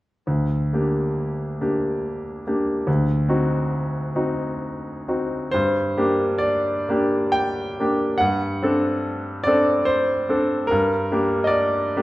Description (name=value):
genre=classical, romantic nocturne for solo piano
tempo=60-75 BPM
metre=3/4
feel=rubato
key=G minor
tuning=A4 = 439 Hz
part: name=bright grand piano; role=solo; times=0.3-12.0 s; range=D2 to G5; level=-20 LUFS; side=equal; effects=none
room=wet recital hall reverb, RT60 1.4 s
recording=none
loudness=-20 LUFS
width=side -18 dB against mid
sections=0.3-5.5 A section; 5.5-12.0 B section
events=none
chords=0.3 Gm/D; 2.9 D7b9; 5.5 Gm; 8.2 D7/G; 10.7 Gm